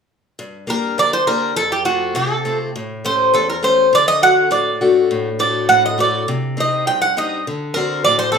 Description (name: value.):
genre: greek folk, Greek bouzouki band.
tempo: 102 BPM.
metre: 2/4.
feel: straight.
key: G harmonic minor.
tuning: A4 = 439 Hz.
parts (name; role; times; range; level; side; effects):
picked steel-string acoustic guitar; accompaniment; 0.4-8.4 s; E2 to G4; -21 LUFS; left 4 dB; none.
Greek bouzouki; melody; 0.7-8.4 s; F#4 to G5; -15 LUFS; right 1 dB; none.
room: moderate large studio reverb, RT60 0.8 s.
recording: band playing live in one room.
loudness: -14 LUFS.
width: side -6 dB against mid.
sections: 0.4-8.4 A section.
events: none.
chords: 0.4 Gm; 1.6 F; 2.8 A7; 3.9 D; 6.3 Cm; 7.5 D7.